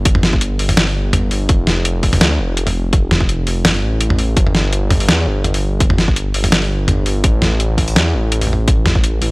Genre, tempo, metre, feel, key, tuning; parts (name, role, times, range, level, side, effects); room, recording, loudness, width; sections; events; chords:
half-time drum and bass; 167 BPM; 4/4; swing 54% on 16ths, half-time; A4 = 439 Hz
dark detuned saw bass; bass; 0.0-9.3 s; F1 to E2; -17 LUFS; equal
boom bap sampler-style drum kit; drums; 0.1-9.3 s; hi-hat, snare drum, toms; -16 LUFS; equal
electronic kick drum; drums; 0.1-9.0 s; -15 LUFS; equal
little or no reverb; dry, gritty hardware recording, cassette tape; -13 LUFS; side -26 dB against mid
0.0-9.3 A section